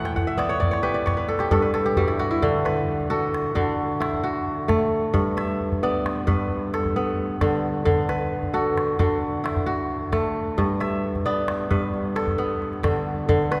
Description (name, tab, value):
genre	west african traditional, West African string and xylophone music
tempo	88 BPM (dotted quarters)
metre	12/8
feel	straight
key	D major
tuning	A4 = 445 Hz
part	kora	arpeggios	0.0-13.6 s	G2 to G5	-25 LUFS	equal	none
part	calabash	percussion	0.1-13.6 s	none	-30 LUFS	equal	none
room	wet cathedral reverb, RT60 6.1 s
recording	recorded in a church or concert hall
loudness	-24 LUFS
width	mono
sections	0.0-2.4 A section; 2.4-13.6 B section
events	kora fill 0.0-2.4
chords	0.0 Em; 1.1 N.C.; 2.4 D; 5.1 G; 7.9 D; 10.6 G